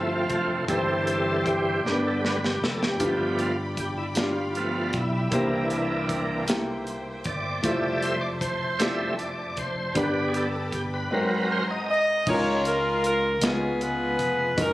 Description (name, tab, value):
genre	slow gospel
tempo	52 BPM (dotted quarters)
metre	6/8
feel	straight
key	C major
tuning	A4 = 441 Hz
part	warm grand piano	accompaniment	0.0-14.7 s	G2 to D5	-30 LUFS	left 1 dB	none
part	bright tonewheel organ	sustained chords	0.0-12.1 s	D3 to E5	-26 LUFS	right 1 dB	slow rotary speaker, overdrive, chorus vibrato
part	rich symphonic string section	sustained chords	0.0-12.3 s	C4 to C6	-37 LUFS	left 1 dB	none
part	fretless electric bass	bass	0.0-14.7 s	F1 to Db2	-33 LUFS	equal	none
part	modern studio drum kit	drums	0.3-14.7 s	crash cymbal, hi-hat, kick drum, snare drum	-31 LUFS	equal	none
part	clear saxophone section	melody	11.9-14.7 s	Cb4 to Eb5	-23 LUFS	equal	none
room	moderate echo chamber reverb, RT60 2.4 s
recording	recorded on a phone in the room, club reverb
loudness	-23 LUFS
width	side -16 dB against mid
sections	0.0-12.3 A section; 12.3-14.7 B section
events	tonewheel organ solo 0.0-12.3; drum fill 1.8-3.0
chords	0.0 G9sus4; 0.7 C/G; 1.8 G; 3.0 G7; 5.3 C7; 7.6 Fmaj7; 10.0 G; 11.1 Ab9; 12.3 Db69; 13.4 Db7